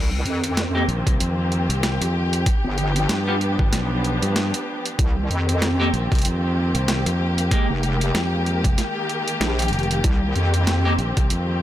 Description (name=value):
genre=glitch hop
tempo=95 BPM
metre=4/4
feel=swing 58% on 16ths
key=C minor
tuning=A4 = 440 Hz
part: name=warm symphonic string section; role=sustained chords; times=0.0-11.6 s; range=Eb3 to G4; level=-26 LUFS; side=left 1 dB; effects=sidechain pumping
part: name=wobble bass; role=bass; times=0.0-11.0 s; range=F1 to F2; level=-21 LUFS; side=equal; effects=chorus, tube saturation
part: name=boom bap sampler-style drum kit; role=drums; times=0.3-11.4 s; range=hi-hat, snare drum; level=-26 LUFS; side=right 1 dB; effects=overdrive
part: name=clean electric guitar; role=stabs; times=0.7-10.9 s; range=Ab3 to G4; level=-27 LUFS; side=equal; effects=sidechain pumping, low-pass filter, ping-pong delay
part: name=overdriven fingered electric bass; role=bass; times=0.9-11.6 s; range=F1 to G2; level=-22 LUFS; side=equal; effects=none
part: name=electronic kick drum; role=drums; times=1.1-11.3 s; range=none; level=-20 LUFS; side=equal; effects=overdrive
room=little or no reverb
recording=none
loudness=-19 LUFS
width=side -12 dB against mid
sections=0.0-11.6 A section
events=none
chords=0.0 Cm7; 2.5 G7; 5.0 Cm7; 7.5 Fm11; 10.0 Cm7